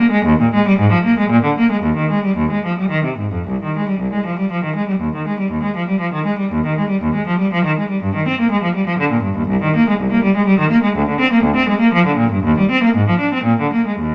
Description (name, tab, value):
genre	classical, baroque-style suite movement for unaccompanied cello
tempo	104-126 BPM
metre	3/4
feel	rubato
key	Eb major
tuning	A4 = 438 Hz
part	rich cello	solo	0.0-14.1 s	C2 to D4	-16 LUFS	equal	none
room	wet stone room reverb, RT60 0.9 s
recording	none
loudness	-16 LUFS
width	mono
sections	0.0-3.5 A section; 3.5-14.1 A section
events	none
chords	none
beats	| 0.26 0.78 1.30 | 1.83 2.37 2.91 | 3.48 4.00 4.50 | 5.00 5.50 6.00 | 6.52 7.03 7.52 | 8.01 8.50 8.98 | 9.49 9.98 10.47 | 10.95 11.44 11.93 | 12.44 12.95 13.46 | 13.98